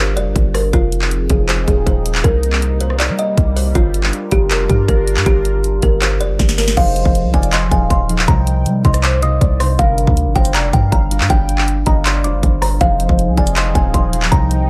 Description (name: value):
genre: hip hop, trap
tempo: 159 BPM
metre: 4/4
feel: half-time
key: unclear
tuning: A4 = 440 Hz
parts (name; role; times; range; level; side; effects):
- kalimba; melody; 0.0-14.7 s; F4 to Eb6; -23 LUFS; equal; low-pass filter
- sweeping resonant pad; sustained chords; 0.0-6.7, 12.8-14.7 s; C3 to Bb4; -29 LUFS; equal; chorus
- warm 808-style bass; bass; 0.0-14.7 s; Eb1 to G3; -19 LUFS; equal; none
- trap drum kit; drums; 0.2-14.6 s; crash cymbal, handclaps, hi-hat, kick drum, rim click, snare drum; -19 LUFS; equal; none
- warm velvety synth lead; second line; 6.8-14.7 s; Bb4 to G5; -28 LUFS; equal; chorus, tape echo
- concert harp; accompaniment; 6.8-14.7 s; C3 to C5; -24 LUFS; equal; low-pass filter
room: little or no reverb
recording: lossy compression artefacts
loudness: -15 LUFS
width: mono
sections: 0.0-6.8 A section; 6.8-14.7 B section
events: drum fill 6.4-6.8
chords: 0.0 Gm7; 0.7 Fm7; 2.2 Cm7; 3.8 Gm7; 6.8 Fm7; 8.3 Cm7; 9.8 Gm7; 12.8 Fm7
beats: 0.36 | 0.73 1.11 1.49 1.86 | 2.24 2.62 3.00 3.38 | 3.75 4.13 4.51 4.88 | 5.26 5.64 6.02 6.39 | 6.77 7.15 7.53 7.90 | 8.28 8.66 9.04 9.41 | 9.79 10.17 10.54 10.92 | 11.30 11.68 12.05 12.43 | 12.81 13.19 13.56 13.94 | 14.32 14.70